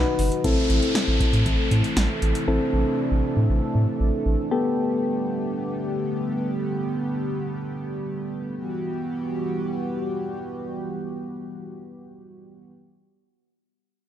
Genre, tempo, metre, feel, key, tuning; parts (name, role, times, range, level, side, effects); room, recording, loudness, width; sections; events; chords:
synth-pop; 118 BPM; 4/4; straight; E minor; A4 = 438 Hz
soft electric-piano-like synth keys; accompaniment; 0.0-6.5 s; B3 to B4; -26 LUFS; left 3 dB; chorus
chorused pulse-width pad; sustained chords; 0.0-12.7 s; B2 to A4; -28 LUFS; right 1 dB
round analog bass; bass; 0.0-4.4 s; G1 to A2; -22 LUFS; equal
electro analog drum machine; drums; 0.2-2.5 s; hi-hat, kick drum, snare drum; -26 LUFS; equal
downlifter; sound effects; 0.4-4.5 s; -31 LUFS; equal
light reverb, digital ambience; dark, warm production; -22 LUFS; side -11 dB against mid
0.4-8.6 A section; 8.6-12.6 B section
0.4 Am; 4.5 Gadd9; 8.6 Emadd9